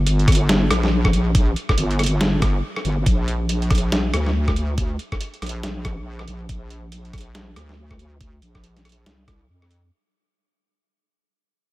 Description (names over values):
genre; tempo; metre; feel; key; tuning
deep dubstep; 140 BPM; 4/4; swing 60% on 16ths, half-time; unclear; A4 = 440 Hz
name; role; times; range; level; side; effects
wobble bass; bass; 0.0-9.9 s; G1 to F2; -22 LUFS; equal; chorus, tube saturation
trip hop sampler-style drum kit; drums; 0.1-9.8 s; hi-hat, rim click, snare drum; -24 LUFS; equal; overdrive
electronic kick drum; drums; 0.3-9.4 s; none; -20 LUFS; equal; none
room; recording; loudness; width
little or no reverb; none; -18 LUFS; side -18 dB against mid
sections
0.0-9.9 A section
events
fade-out 0.0-9.9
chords
none